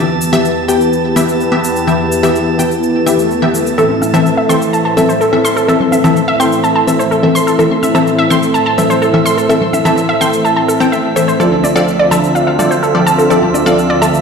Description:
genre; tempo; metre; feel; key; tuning
progressive house; 126 BPM; 4/4; straight; A minor; A4 = 441 Hz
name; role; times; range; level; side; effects
filtered supersaw swell; sustained chords; 0.0-14.2 s; D2 to E5; -15 LUFS; equal; low-pass filter
wide unison pluck; stabs; 0.0-14.1 s; E3 to G5; -14 LUFS; left 2 dB; phaser, ping-pong delay
drifting glass-harmonics texture; texture; 0.0-14.2 s; E5 to A5; -24 LUFS; right 2 dB; chorus, built-in reverb
shaker; drums; 0.2-14.2 s; none; -26 LUFS; left 1 dB; overdrive
swell; sound effects; 3.0-3.8 s; none; -21 LUFS; left 3 dB; none
glassy wavetable pluck; arpeggios; 3.8-14.0 s; A4 to C6; -14 LUFS; right 1 dB; chorus, ping-pong delay
congas and woodblock; percussion; 3.9-14.0 s; none; -22 LUFS; left 2 dB; none
room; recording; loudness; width
moderate lush hall reverb, RT60 2.0 s, digital ambience; played on a big sound system in a bare room, large studio reverb; -10 LUFS; side -5 dB against mid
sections
0.0-14.2 A section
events
filter sweep on supersaw synth 0.0-14.2; swell 3.0-3.8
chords
0.0 Em; 3.8 Am; 11.4 Dm7

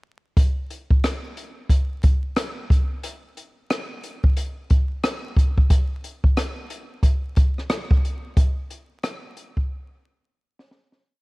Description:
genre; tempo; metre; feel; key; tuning
hip hop; 90 BPM; 4/4; swing 64% on 16ths; none; none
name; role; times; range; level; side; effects
open jazz drum kit; drums; 0.4-11.0 s; hi-hat, kick drum, rim click, snare drum; -19 LUFS; equal; none
room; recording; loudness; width
little or no reverb; vinyl crackle; -20 LUFS; side -24 dB against mid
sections
0.4-11.0 A section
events
fade-out 8.4-11.0; drum fill 9.7-11.0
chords
none

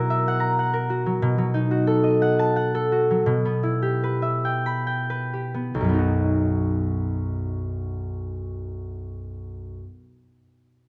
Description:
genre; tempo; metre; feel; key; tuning
classical, solo harp piece; 42-65 BPM (dotted quarters); 6/8; rubato; B major; A4 = 440 Hz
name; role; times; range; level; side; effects
concert harp; solo; 0.0-10.0 s; B1 to B5; -24 LUFS; equal; none
room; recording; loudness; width
moderate recital hall reverb, RT60 1.6 s; close, detailed microphones; -23 LUFS; mono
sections
0.0-5.8 A section; 5.8-10.6 B section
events
slowing down 0.3-5.8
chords
0.0 F#7/B; 1.2 B7; 3.3 Em/B; 5.8 B

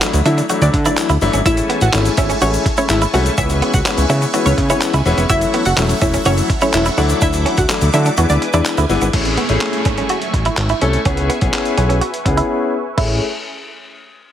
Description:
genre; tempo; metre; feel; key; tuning
dance-pop; 125 BPM; 4/4; straight; A major; A4 = 440 Hz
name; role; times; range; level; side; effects
warm concert grand piano; accompaniment; 0.0-13.2 s; E3 to A4; -20 LUFS; left 4 dB; sidechain pumping, low-pass filter
direct-recorded clean electric guitar; riff; 0.0-13.1 s; A3 to F#4; -22 LUFS; right 5 dB; lush chorus, low-pass filter
dusty soul sampler-style drum kit; drums; 0.0-13.1 s; crash cymbal, handclaps, hi-hat, kick drum; -21 LUFS; equal; none
egg shaker; percussion; 0.0-9.1 s; none; -30 LUFS; left 8 dB; none
fat analog bass; bass; 0.1-13.2 s; E1 to D3; -17 LUFS; equal; sidechain pumping
analog pluck; melody; 0.3-8.7 s; C#4 to F#5; -20 LUFS; equal; chorus
filtered supersaw swell; sustained chords; 1.5-13.2 s; A3 to D6; -26 LUFS; right 1 dB; phaser, sidechain pumping, low-pass filter
downlifter; sound effects; 9.1-13.0 s; none; -27 LUFS; right 4 dB; none
room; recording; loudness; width
light reverb; heavily compressed radio sound; -13 LUFS; side -10 dB against mid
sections
0.0-9.1 A section; 9.1-13.0 B section; 13.0-14.3 C section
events
drop 0.0-9.1; kick muted 8.2-9.1; filter sweep 9.1-13.0; break 12.5-13.0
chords
0.0 Dadd9; 1.5 Amaj7; 3.4 C#m7; 5.3 F#m7; 7.0 Dadd9; 8.2 E7; 9.1 Amaj7; 11.1 C#m7; 13.0 Amaj7

